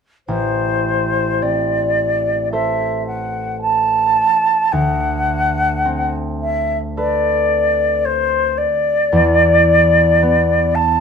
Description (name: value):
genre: classical, impressionist duo for flute and harp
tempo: 54 BPM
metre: 4/4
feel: rubato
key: A dorian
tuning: A4 = 443 Hz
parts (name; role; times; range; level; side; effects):
- silver concert flute; melody; 0.3-11.0 s; C5 to A5; -15 LUFS; equal; none
- concert harp; accompaniment; 0.3-11.0 s; A1 to C5; -20 LUFS; equal; none
room: moderate studio reverb, RT60 0.7 s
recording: minimal, uncompressed stereo recording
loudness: -14 LUFS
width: side -6 dB against mid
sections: 0.3-11.0 A section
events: none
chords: 0.3 Am; 4.7 D6; 9.1 E7(no3)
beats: | 0.28 1.42 2.52 3.63 | 4.73 5.86 6.97 8.05 | 9.12 10.21